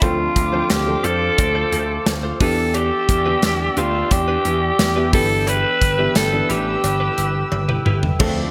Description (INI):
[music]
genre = 1980s-style pop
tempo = 88 BPM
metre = 4/4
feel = straight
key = unclear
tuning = A4 = 439 Hz
[part]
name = growling alto saxophone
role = melody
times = 0.0-7.8 s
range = F4 to B4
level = -22 LUFS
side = equal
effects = none
[part]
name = dark baby grand piano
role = accompaniment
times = 0.0-8.5 s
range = D3 to A4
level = -29 LUFS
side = equal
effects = analog chorus
[part]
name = chorused pulse-width pad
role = sustained chords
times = 0.0-8.5 s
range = B4 to E6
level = -31 LUFS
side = equal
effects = none
[part]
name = direct-recorded clean electric guitar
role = riff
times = 0.0-8.4 s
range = C4 to C5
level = -32 LUFS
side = equal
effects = ensemble chorus, digital delay
[part]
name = vintage slap bass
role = bass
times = 0.0-8.4 s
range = G1 to F2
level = -26 LUFS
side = equal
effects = none
[part]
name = modern studio drum kit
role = drums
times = 0.0-8.4 s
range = crash cymbal, hi-hat, kick drum, snare drum, toms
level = -23 LUFS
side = equal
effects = gated reverb
[part]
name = cowbell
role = percussion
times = 0.0-8.4 s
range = none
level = -37 LUFS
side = equal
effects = none
[sound]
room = light reverb, small room ambience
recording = bright 1980s-style digital production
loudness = -18 LUFS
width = mono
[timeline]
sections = 0.0-8.2 A section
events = drum fill 7.5-8.2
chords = 0.0 Dm7; 2.4 Em7; 5.1 G6